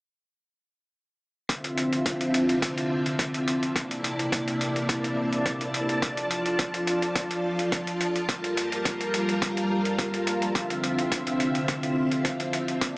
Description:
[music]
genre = nu-disco, nu disco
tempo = 106 BPM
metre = 4/4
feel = straight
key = D minor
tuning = A4 = 440 Hz
[part]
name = string machine, full ensemble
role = sustained chords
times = 1.5-13.0 s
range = C3 to A5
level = -26 LUFS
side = equal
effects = ensemble chorus, sidechain pumping
[part]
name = electronic hi-hat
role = drums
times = 1.5-12.9 s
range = none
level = -31 LUFS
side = equal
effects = overdrive
[part]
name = electronic kick drum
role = drums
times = 1.5-12.9 s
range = none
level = -30 LUFS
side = equal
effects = overdrive, high-pass filter on kick, high-pass filter on room
[sound]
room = moderate plate reverb, RT60 2.2 s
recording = small speaker sound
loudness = -24 LUFS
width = side -25 dB against mid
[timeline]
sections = 1.5-13.0 A section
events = none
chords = 1.5 Dm9; 3.8 C13; 6.0 F6; 8.3 Gm9; 10.6 Dm9

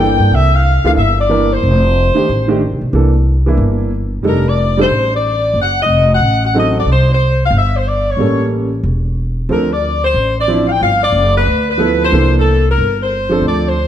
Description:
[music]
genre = jazz, big band swing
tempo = 183 BPM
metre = 4/4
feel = swing 64% on 8ths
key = C mixolydian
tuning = A4 = 441 Hz
[part]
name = warm saxophone section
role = melody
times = 0.0-13.9 s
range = A4 to G5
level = -15 LUFS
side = left 2 dB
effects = none
[part]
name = clear concert grand piano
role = accompaniment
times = 0.0-13.7 s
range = Eb3 to Bb4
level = -17 LUFS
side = right 2 dB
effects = none
[part]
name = upright bass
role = bass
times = 0.0-13.9 s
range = E1 to G2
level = -14 LUFS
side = equal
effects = none
[sound]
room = moderate recital hall reverb, RT60 1.7 s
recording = dark, warm production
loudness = -11 LUFS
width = side -10 dB against mid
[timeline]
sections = 0.0-13.9 A section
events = none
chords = 0.0 C13; 1.6 F13; 2.9 C13; 4.2 F13; 5.6 F#dim7; 6.9 C5; 8.2 A7b9; 9.5 Dm7; 10.8 G13; 12.1 C13

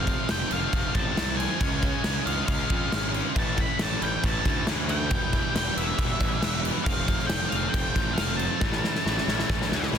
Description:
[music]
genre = quiet-loud alternative rock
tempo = 137 BPM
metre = 4/4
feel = straight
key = unclear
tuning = A4 = 440 Hz
[part]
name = octave-fuzz lead guitar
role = melody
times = 0.0-9.9 s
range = E5 to B5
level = -31 LUFS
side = equal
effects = distortion, slapback echo
[part]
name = fuzz guitar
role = riff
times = 0.0-10.0 s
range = A2 to F4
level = -34 LUFS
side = right 13 dB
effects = distortion
[part]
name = tight distorted guitar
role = riff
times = 0.0-10.0 s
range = A2 to F4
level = -33 LUFS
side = left 16 dB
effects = distortion
[part]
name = tight distorted guitar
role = riff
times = 0.0-10.0 s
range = E2 to C#4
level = -34 LUFS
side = equal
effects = distortion
[part]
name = fuzz picked electric bass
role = bass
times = 0.0-10.0 s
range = E1 to E#2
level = -31 LUFS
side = equal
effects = overdrive
[part]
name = big rock drum kit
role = drums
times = 0.1-10.0 s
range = crash cymbal, kick drum, snare drum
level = -27 LUFS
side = equal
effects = none
[sound]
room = little or no reverb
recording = dense, heavily limited modern master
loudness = -23 LUFS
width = side -8 dB against mid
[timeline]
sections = 0.0-10.0 A section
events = drum fill 8.6-10.0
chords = 0.0 F; 1.6 C#; 3.4 A; 5.1 Em; 6.9 F; 8.6 A

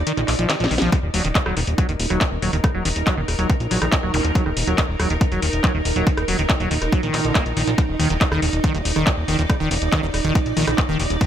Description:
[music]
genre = psychedelic trance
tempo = 140 BPM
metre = 4/4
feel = straight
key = Eb harmonic minor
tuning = A4 = 440 Hz
[part]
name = swarming drone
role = sustained chords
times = 0.0-11.3 s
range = Eb4 to D5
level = -26 LUFS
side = right 3 dB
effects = built-in reverb, sidechain pumping
[part]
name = fat analog bass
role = bass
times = 0.0-11.2 s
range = Eb1 to Bb1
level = -23 LUFS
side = equal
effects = tube saturation
[part]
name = liquid acid bass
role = riff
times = 0.1-11.3 s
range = D3 to Bb3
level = -25 LUFS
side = equal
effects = chorus, auto-pan, sidechain pumping, tape echo
[part]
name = techno drum kit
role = drums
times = 0.1-11.3 s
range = handclaps, hi-hat, rim click, snare drum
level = -25 LUFS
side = left 1 dB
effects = none
[part]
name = electronic kick drum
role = drums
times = 0.9-11.3 s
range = none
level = -19 LUFS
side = equal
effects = none
[part]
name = zap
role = sound effects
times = 4.1-4.2 s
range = none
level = -29 LUFS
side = equal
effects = none
[sound]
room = little or no reverb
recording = none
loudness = -18 LUFS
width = side -10 dB against mid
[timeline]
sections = 0.0-11.3 A section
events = break 0.1-0.9; drum fill 0.5-0.9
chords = 0.0 Eb5

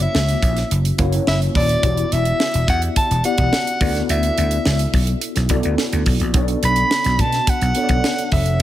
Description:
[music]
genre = polished 1980s jazz-funk pop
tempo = 106 BPM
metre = 4/4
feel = straight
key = B minor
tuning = A4 = 441 Hz
[part]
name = warm soprano saxophone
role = melody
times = 0.0-8.6 s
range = D5 to B5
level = -21 LUFS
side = equal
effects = none
[part]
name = mellow tine electric piano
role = accompaniment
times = 0.0-8.6 s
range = A#3 to D5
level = -24 LUFS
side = left 2 dB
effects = overdrive, fast stereo tremolo, lush chorus
[part]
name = vintage slap bass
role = bass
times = 0.0-8.6 s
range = D#1 to B2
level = -19 LUFS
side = equal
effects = none
[part]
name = tight funk drum kit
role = drums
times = 0.0-8.6 s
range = hi-hat, kick drum, snare drum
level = -21 LUFS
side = equal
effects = none
[sound]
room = small room ambience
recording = none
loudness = -16 LUFS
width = side -13 dB against mid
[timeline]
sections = 0.0-8.6 A section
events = none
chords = 0.0 F#7; 1.8 Em9; 3.8 D69; 6.3 Bm7

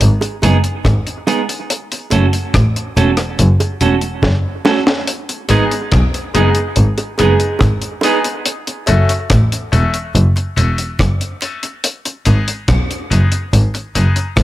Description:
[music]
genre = dub reggae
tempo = 71 BPM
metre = 4/4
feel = straight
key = F# dorian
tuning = A4 = 440 Hz
[part]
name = rich double bass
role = bass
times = 0.0-14.4 s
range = E1 to B1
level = -14 LUFS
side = equal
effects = none
[part]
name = deep reggae drum kit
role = drums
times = 0.0-14.4 s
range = hi-hat, kick drum, rim click, snare drum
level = -18 LUFS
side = left 1 dB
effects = none
[part]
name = bongos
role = percussion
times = 0.2-14.4 s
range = none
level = -24 LUFS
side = right 3 dB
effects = high-pass filter on perc, dub echo
[part]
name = clean electric guitar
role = accompaniment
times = 0.4-8.3 s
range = G#3 to A4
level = -19 LUFS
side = right 6 dB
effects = spring reverb, high-pass filter, dub echo
[part]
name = bright concert grand piano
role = stabs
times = 5.5-14.3 s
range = G#3 to A4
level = -21 LUFS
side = left 2 dB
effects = high-pass filter, dub echo
[sound]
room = light reverb, studio reverb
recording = none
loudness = -13 LUFS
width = side -15 dB against mid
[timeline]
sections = 0.0-14.4 A section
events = break 0.0-5.1; drum fill 4.2-5.1; filter sweep 5.1-14.4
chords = 0.0 G#m; 1.7 F#m; 5.1 G#m; 8.5 F#m; 11.8 G#m

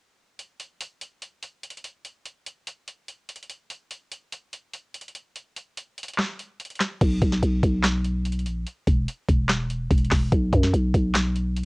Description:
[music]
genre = hip hop, trap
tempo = 145 BPM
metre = 4/4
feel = half-time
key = unclear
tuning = A4 = 440 Hz
[part]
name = trap drum kit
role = drums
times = 0.4-11.6 s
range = crash cymbal, handclaps, hi-hat, kick drum, snare drum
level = -24 LUFS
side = equal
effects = vintage 12-bit sampler grit
[part]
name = growling 808-style bass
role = bass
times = 7.0-11.7 s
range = E1 to F#2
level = -22 LUFS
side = equal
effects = none
[sound]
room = little or no reverb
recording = home recording on cassette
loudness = -21 LUFS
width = side -35 dB against mid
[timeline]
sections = 0.4-7.0 A section; 7.0-11.7 B section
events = none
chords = none

